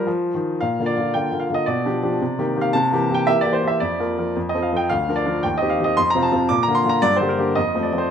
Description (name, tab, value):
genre	classical-period piano sonatina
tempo	112 BPM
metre	2/4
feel	straight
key	Bb major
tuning	A4 = 440 Hz
part	clear baby grand piano	solo	0.0-8.1 s	D2 to D6	-18 LUFS	equal	none
room	moderate recital hall reverb, RT60 1.6 s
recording	close, detailed microphones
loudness	-18 LUFS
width	side -8 dB against mid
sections	0.6-8.1 A section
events	none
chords	0.1 Ebsus2; 0.6 Bb; 1.7 G7/B; 2.2 Cm7; 2.7 C7; 3.8 Bb/F; 4.4 F; 4.9 Bb/D; 5.4 Cm/Eb; 6.0 F; 6.5 Bb; 7.0 Gm; 7.6 F